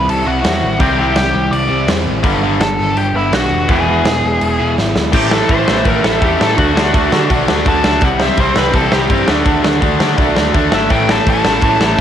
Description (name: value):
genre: punk rock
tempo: 166 BPM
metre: 4/4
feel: straight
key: unclear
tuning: A4 = 441 Hz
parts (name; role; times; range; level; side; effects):
- biting lead guitar; melody; 0.0-12.0 s; E4 to D6; -18 LUFS; left 1 dB; overdrive, cassette tape, tape echo
- crunchy overdriven guitar; riff; 0.0-12.0 s; G2 to G4; -18 LUFS; equal; cassette tape
- overdriven picked electric bass; bass; 0.0-12.0 s; E1 to D3; -21 LUFS; equal; none
- big rock drum kit; drums; 0.1-12.0 s; crash cymbal, kick drum, snare drum; -16 LUFS; equal; cassette tape
- cranked stack guitar; riff; 0.8-12.0 s; E2 to D4; -19 LUFS; right 10 dB; overdrive, cassette tape
- tight distorted guitar; riff; 0.8-12.0 s; E2 to D4; -19 LUFS; left 11 dB; distortion, cassette tape
room: light reverb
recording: home recording on cassette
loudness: -11 LUFS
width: side -9 dB against mid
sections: 0.0-5.1 A section; 5.1-12.0 B section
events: half time 0.0-5.1; drum fill 4.8-5.1; lead electric guitar solo 5.1-12.0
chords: 0.0 C; 2.2 G; 3.7 E; 5.1 A; 6.6 D; 8.0 C; 9.3 D; 10.9 A